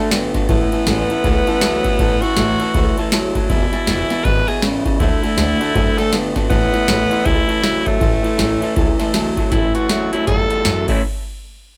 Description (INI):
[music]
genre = rockabilly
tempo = 160 BPM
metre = 4/4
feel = swing 61% on 8ths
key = A major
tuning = A4 = 440 Hz
[part]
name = picked steel-string acoustic guitar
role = accompaniment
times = 0.0-11.0 s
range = E2 to F#4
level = -31 LUFS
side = equal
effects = none
[part]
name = warm upright piano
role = accompaniment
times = 0.0-11.0 s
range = B4 to B5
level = -35 LUFS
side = equal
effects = none
[part]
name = electric guitar through a small old amp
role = riff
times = 0.0-11.0 s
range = E2 to E4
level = -22 LUFS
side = equal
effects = none
[part]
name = upright bass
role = bass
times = 0.1-11.0 s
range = E1 to F#2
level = -26 LUFS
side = equal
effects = none
[part]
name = booming analog drum machine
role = drums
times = 0.1-10.9 s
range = crash cymbal, hi-hat, kick drum, ride cymbal, snare drum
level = -22 LUFS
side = equal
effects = none
[part]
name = raspy tenor saxophone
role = melody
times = 0.5-11.0 s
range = A3 to B4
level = -23 LUFS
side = equal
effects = none
[sound]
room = light reverb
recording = rough rehearsal-room recording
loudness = -17 LUFS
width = mono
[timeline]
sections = 0.0-9.5 A section; 9.5-11.0 B section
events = none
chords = 0.5 A; 3.5 E; 5.0 D; 6.5 A; 11.0 N.C.